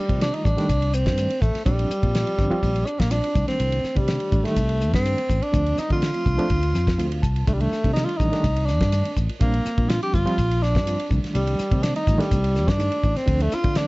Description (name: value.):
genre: electric jazz fusion.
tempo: 124 BPM.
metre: 4/4.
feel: straight.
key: C dorian.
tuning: A4 = 440 Hz.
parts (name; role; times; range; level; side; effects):
warm tenor saxophone; melody; 0.0-13.9 s; G3 to G4; -25 LUFS; equal; plate reverb.
reed electric piano; accompaniment; 0.0-13.9 s; Eb3 to A5; -28 LUFS; right 1 dB; medium tremolo.
sustaining fretless electric bass; bass; 0.1-13.8 s; G1 to D3; -23 LUFS; equal; none.
damped 70s drum kit; drums; 0.1-13.9 s; hi-hat, kick drum, ride cymbal, snare drum; -25 LUFS; equal; none.
room: light reverb.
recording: cassette tape, nothing above 7.8 kHz.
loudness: -19 LUFS.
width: side -23 dB against mid.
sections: 0.0-13.9 A section.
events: reed electric piano fill 6.7-7.5.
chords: 0.0 Cm69; 1.7 Bb69; 3.4 Cm69; 5.5 Dm7; 7.5 Cm69; 9.4 Bb69; 11.1 Cm69; 13.3 Dm7.